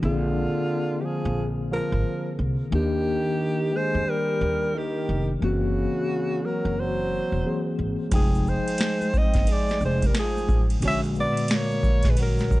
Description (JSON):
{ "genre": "hip hop, jazz-hop", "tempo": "89 BPM", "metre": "4/4", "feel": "swing 63% on 16ths", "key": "Eb major", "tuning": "A4 = 441 Hz", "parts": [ { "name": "breathy alto saxophone", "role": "melody", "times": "0.0-12.6 s", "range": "F4 to Fb5", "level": "-28 LUFS", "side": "equal", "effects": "tape echo" }, { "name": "growling trombone", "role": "second line", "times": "0.0-12.6 s", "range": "Db3 to Db4", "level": "-32 LUFS", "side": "right 3 dB", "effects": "none" }, { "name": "mellow tine electric piano", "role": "accompaniment", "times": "0.0-12.6 s", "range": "Bb2 to G5", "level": "-28 LUFS", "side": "left 2 dB", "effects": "medium stereo tremolo" }, { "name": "upright bass", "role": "bass", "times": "0.0-12.6 s", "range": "Fb1 to F2", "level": "-27 LUFS", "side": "equal", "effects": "none" }, { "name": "booming analog drum machine", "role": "drums", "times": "8.1-12.6 s", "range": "hi-hat, kick drum, ride cymbal, snare drum", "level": "-23 LUFS", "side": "equal", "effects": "overdrive" }, { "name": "egg shaker and congas", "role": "percussion", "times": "8.1-12.6 s", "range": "none", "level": "-40 LUFS", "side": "right 4 dB", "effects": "none" } ], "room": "studio ambience", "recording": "dark, warm production, nothing above 10.4 kHz", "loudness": "-22 LUFS", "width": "side -18 dB against mid", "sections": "0.0-12.6 A section", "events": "none", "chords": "0.0 Bb9; 2.7 Ebmaj7; 5.4 Gb7#11; 8.1 Fm9; 10.8 Bbaug7", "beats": "| 0.03 0.71 1.38 2.05 | 2.73 3.40 4.08 4.75 | 5.42 6.10 6.77 7.45 | 8.12 8.80 9.47 10.14 | 10.82 11.49 12.17" }